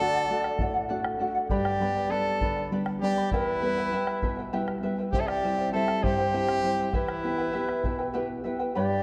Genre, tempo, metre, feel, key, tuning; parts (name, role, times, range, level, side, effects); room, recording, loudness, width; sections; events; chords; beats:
andean folk, Andean ensemble; 66 BPM (dotted quarters); 6/8; straight; E minor; A4 = 440 Hz
bright trumpet; melody; 0.0-9.0 s; E4 to A4; -32 LUFS; equal
mellow large quena; second line; 0.0-9.0 s; B4 to E5; -34 LUFS; equal
charango; accompaniment; 0.0-9.0 s; E4 to B5; -35 LUFS; equal
nylon-string guitar; accompaniment; 0.0-9.0 s; E2 to G4; -34 LUFS; equal
bombo; percussion; 0.1-8.7 s; -36 LUFS; equal
moderate concert hall reverb, RT60 2.1 s; -28 LUFS; mono
0.0-8.7 A section
0.0 D; 1.5 G; 3.3 Em; 5.1 C; 6.9 Em
0.60 | 1.50 2.41 | 3.32 4.22 | 5.13 6.03 | 6.94 7.84 | 8.75